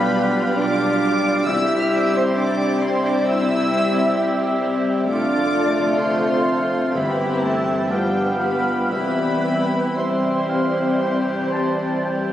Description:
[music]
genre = classical, slow romantic movement for symphony orchestra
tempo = 56-68 BPM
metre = 4/4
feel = rubato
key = C major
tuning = A4 = 440 Hz
[part]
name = warm symphonic violin section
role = melody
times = 0.0-12.3 s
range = G5 to F6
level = -28 LUFS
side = left 1 dB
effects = none
[part]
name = clear clarinet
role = second line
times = 0.0-12.3 s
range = F4 to G4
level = -30 LUFS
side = left 2 dB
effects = none
[part]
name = large flute ensemble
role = second line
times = 0.0-12.3 s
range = G4 to E5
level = -28 LUFS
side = equal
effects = none
[part]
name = warm chamber violin section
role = second line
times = 0.0-12.3 s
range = D4 to A4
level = -29 LUFS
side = left 1 dB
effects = none
[part]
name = warm oboe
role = second line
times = 0.0-12.3 s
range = E5 to A5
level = -27 LUFS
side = right 1 dB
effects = none
[part]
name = dark chamber viola section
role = accompaniment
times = 0.0-12.3 s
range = D3 to D4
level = -26 LUFS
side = equal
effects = none
[part]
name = mellow bassoon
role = accompaniment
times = 0.0-12.3 s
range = G3 to C4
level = -27 LUFS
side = equal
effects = none
[part]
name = warm French horn section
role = sustained chords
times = 0.0-12.3 s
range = G3 to E4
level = -24 LUFS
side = left 1 dB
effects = none
[part]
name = dark chamber cello section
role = bass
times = 0.0-12.3 s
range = F2 to C3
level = -28 LUFS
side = equal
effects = none
[part]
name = rich studio double bass section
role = bass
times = 0.0-12.3 s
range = F1 to C2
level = -32 LUFS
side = right 2 dB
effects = none
[part]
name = timpani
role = percussion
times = 1.5-10.5 s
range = G2 to C3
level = -35 LUFS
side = left 1 dB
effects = none
[sound]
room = wet concert hall reverb, RT60 1.9 s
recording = recorded on a phone in the room, club reverb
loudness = -17 LUFS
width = side -12 dB against mid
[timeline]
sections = 0.0-12.3 A section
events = none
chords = 0.0 G7/B; 1.5 C; 5.1 Dm/F; 6.9 C/G; 7.9 G7; 8.9 C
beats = 0.57 | 1.46 2.36 3.27 4.19 | 5.11 6.01 6.94 7.90 | 8.90 9.96 11.02 12.03

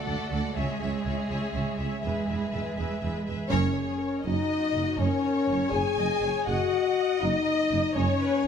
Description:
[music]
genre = cinematic, epic orchestral film score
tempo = 81 BPM (dotted quarters)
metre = 12/8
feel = straight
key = E mixolydian, F# major from 3.5 s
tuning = A4 = 438 Hz
[part]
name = warm symphonic violin section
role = melody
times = 0.0-8.5 s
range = G#4 to G#5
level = -36 LUFS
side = left 5 dB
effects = none
[part]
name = warm symphonic violin section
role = second line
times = 0.0-8.5 s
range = C#5 to G#5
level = -36 LUFS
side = left 2 dB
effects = none
[part]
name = dark symphonic viola section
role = accompaniment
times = 0.0-8.5 s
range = F#4 to D#5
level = -36 LUFS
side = right 1 dB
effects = none
[part]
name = mellow French horn section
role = sustained chords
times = 0.0-8.5 s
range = C#4 to E5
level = -28 LUFS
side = left 4 dB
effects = none
[part]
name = warm symphonic cello section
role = bass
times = 0.0-8.5 s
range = F#2 to A3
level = -35 LUFS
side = right 4 dB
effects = none
[part]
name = dark tuba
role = bass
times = 0.1-8.1 s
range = E1 to D2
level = -35 LUFS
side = right 3 dB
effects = none
[part]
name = warm chamber double bass section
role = bass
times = 0.1-8.5 s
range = F#1 to E2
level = -33 LUFS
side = right 4 dB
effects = none
[sound]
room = moderate scoring stage reverb, RT60 1.6 s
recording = none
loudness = -25 LUFS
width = side -7 dB against mid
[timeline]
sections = 0.0-3.5 A section; 3.5-8.5 B section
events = band accent 3.5-4.0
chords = 0.0 D; 0.6 C#m; 2.0 E; 3.5 F#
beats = | 0.55 1.29 2.03 2.77 | 3.51 4.25 5.00 5.74 | 6.48 7.22 7.96

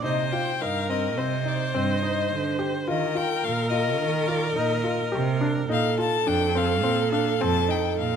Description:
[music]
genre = contemporary instrumental, chamber music in an uneven meter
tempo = 106 BPM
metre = 5/4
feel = straight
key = C dorian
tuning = A4 = 440 Hz
[part]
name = warm violin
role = melody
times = 0.0-8.2 s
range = D5 to A5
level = -28 LUFS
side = left 8 dB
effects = none
[part]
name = rich viola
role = second line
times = 0.0-8.2 s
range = A4 to C5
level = -28 LUFS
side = right 3 dB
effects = none
[part]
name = warm baby grand piano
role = arpeggios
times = 0.0-8.0 s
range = C4 to G4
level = -29 LUFS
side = left 3 dB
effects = none
[part]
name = muted cello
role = bass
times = 0.0-8.2 s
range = F2 to Eb3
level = -27 LUFS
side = right 4 dB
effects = none
[sound]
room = moderate concert hall reverb, RT60 2.4 s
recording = none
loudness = -22 LUFS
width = side -7 dB against mid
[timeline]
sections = 0.0-8.2 A section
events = none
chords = 0.0 Cm7; 2.9 Ebsus2; 5.7 Bbsus2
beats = | 0.03 0.61 1.18 1.74 2.31 | 2.88 3.44 4.00 4.57 5.13 | 5.70 6.26 6.84 7.41 7.97

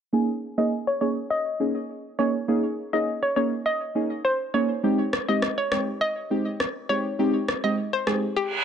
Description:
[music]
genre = dancehall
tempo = 102 BPM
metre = 4/4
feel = straight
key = unclear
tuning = A4 = 442 Hz
[part]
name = deep mellow chord stab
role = accompaniment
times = 0.1-8.2 s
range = Ab3 to Ab4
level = -25 LUFS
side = right 1 dB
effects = chorus, low-pass filter
[part]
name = hollow square pluck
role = melody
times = 0.6-8.6 s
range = G4 to Eb5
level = -26 LUFS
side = left 1 dB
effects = chorus, low-pass filter, tape echo
[part]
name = electronic rim click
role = drums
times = 5.1-8.2 s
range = none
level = -27 LUFS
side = left 1 dB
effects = none
[part]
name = reverse cymbal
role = sound effects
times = 8.5-8.6 s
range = none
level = -24 LUFS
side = right 4 dB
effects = none
[sound]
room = light reverb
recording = nothing above 10.5 kHz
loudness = -23 LUFS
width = side -8 dB against mid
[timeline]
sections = 0.1-8.6 A section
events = filter sweep 0.1-8.6; reverse cymbal 8.5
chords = 0.1 Eb7sus4; 4.8 Abmaj7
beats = | 0.13 0.72 1.31 1.89 | 2.48 3.07 3.66 4.25 | 4.84 5.42 6.01 6.60 | 7.19 7.78 8.37

